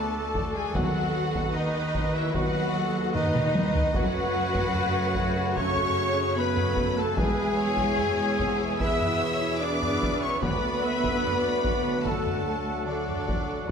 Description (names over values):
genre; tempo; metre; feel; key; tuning
cinematic, epic orchestral film score; 74 BPM; 4/4; straight; unclear; A4 = 438 Hz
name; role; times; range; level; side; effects
rich symphonic violin section; melody; 0.0-13.7 s; D5 to E6; -33 LUFS; left 3 dB; none
rich symphonic violin section; second line; 0.0-13.7 s; D4 to E5; -34 LUFS; left 3 dB; none
rich symphonic viola section; accompaniment; 0.0-13.7 s; F#4 to E5; -34 LUFS; right 1 dB; none
mellow woodwind section; sustained chords; 0.0-13.7 s; A3 to F#5; -36 LUFS; equal; none
mellow trumpet section; stabs; 0.0-13.7 s; D4 to E5; -30 LUFS; equal; none
rich symphonic cello section; bass; 0.0-13.7 s; D3 to E4; -32 LUFS; right 2 dB; none
rich symphonic double bass section; bass; 0.0-13.7 s; D2 to F#2; -33 LUFS; right 2 dB; none
taiko ensemble; drums; 0.3-13.7 s; none; -31 LUFS; equal; none
mellow French horn section; sustained chords; 0.7-13.7 s; A3 to G#4; -35 LUFS; left 4 dB; none
mellow trombone section; sustained chords; 0.7-13.7 s; B2 to F#3; -38 LUFS; right 3 dB; none
room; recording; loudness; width
moderate scoring stage reverb, RT60 1.6 s; none; -23 LUFS; side -6 dB against mid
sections
0.0-13.7 A section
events
drum fill 3.1-4.0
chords
0.0 D; 0.7 B/D#; 4.0 F#m; 7.2 E; 10.4 D